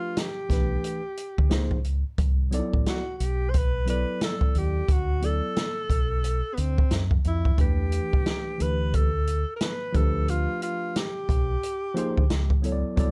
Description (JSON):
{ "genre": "hip hop, jazz-hop", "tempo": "89 BPM", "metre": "4/4", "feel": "swing 60% on 16ths", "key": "E minor", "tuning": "A4 = 440 Hz", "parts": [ { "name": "warm alto saxophone", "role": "melody", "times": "0.0-12.6 s", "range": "B3 to C5", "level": "-33 LUFS", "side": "equal", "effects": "none" }, { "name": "tine electric piano", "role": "accompaniment", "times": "0.0-13.1 s", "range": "E3 to D5", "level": "-33 LUFS", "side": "equal", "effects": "none" }, { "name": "open jazz drum kit", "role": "drums", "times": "0.2-13.1 s", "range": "hi-hat, kick drum, snare drum", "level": "-28 LUFS", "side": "equal", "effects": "none" }, { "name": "deep dub fingered electric bass", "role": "bass", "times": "0.5-13.1 s", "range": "A1 to F#2", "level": "-29 LUFS", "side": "equal", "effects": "none" } ], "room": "little or no reverb", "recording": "dark, warm production", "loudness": "-26 LUFS", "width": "mono", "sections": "0.0-13.1 A section", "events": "none", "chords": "0.0 G9; 1.5 C#maj9#11; 2.2 Cmaj9#11; 4.9 D69; 7.6 Em7; 9.9 G9/D; 12.3 Bm11/C#", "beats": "0.17 0.84 1.52 | 2.19 2.87 3.54 4.21 | 4.89 5.56 6.24 6.91 | 7.58 8.26 8.93 9.61 | 10.28 10.96 11.63 12.30 | 12.98" }